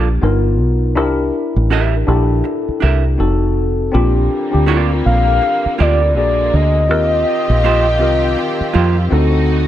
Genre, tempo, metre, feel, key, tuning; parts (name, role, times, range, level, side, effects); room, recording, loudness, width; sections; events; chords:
R&B, neo-soul; 81 BPM; 4/4; swing 60% on 16ths; Bb major; A4 = 440 Hz
vintage hollow-body jazz guitar; second line; 0.0-9.0 s; Bb3 to E5; -22 LUFS; right 8 dB
tine electric piano; accompaniment; 0.0-9.7 s; Bb3 to A#4; -19 LUFS; left 3 dB; overdrive, wide subtle chorus
deep dub fingered electric bass; bass; 0.0-9.7 s; F1 to F2; -15 LUFS; equal
dark studio string section; sustained chords; 3.9-9.7 s; D3 to G4; -24 LUFS; right 2 dB
gliding portamento lead; melody; 5.1-9.5 s; D5 to F5; -16 LUFS; left 1 dB; chorus, slapback echo
light reverb; -12 LUFS; side -12 dB against mid
0.0-9.7 A section
0.2 G7alt; 1.0 C9; 3.2 F7b9; 3.9 Bb6; 6.1 Bbaug7; 6.9 Eb69; 9.1 D7b9